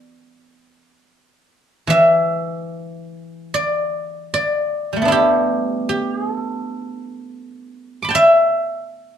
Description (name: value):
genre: chinese traditional, Chinese solo plucked strings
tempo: 70-80 BPM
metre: 4/4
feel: rubato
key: D zhi mode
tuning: A4 = 444 Hz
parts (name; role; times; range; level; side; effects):
- guzheng; solo; 0.0-9.2 s; E3 to D6; -16 LUFS; equal; none
room: moderate studio reverb, RT60 0.7 s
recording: band playing live in one room, lossy compression artefacts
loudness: -16 LUFS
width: side -9 dB against mid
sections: 0.0-1.9 A section; 1.9-9.2 B section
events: none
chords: none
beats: 0.19 1.04 | 1.89 2.71 3.52 4.31 | 5.08 5.85 6.62 7.38 | 8.14 8.92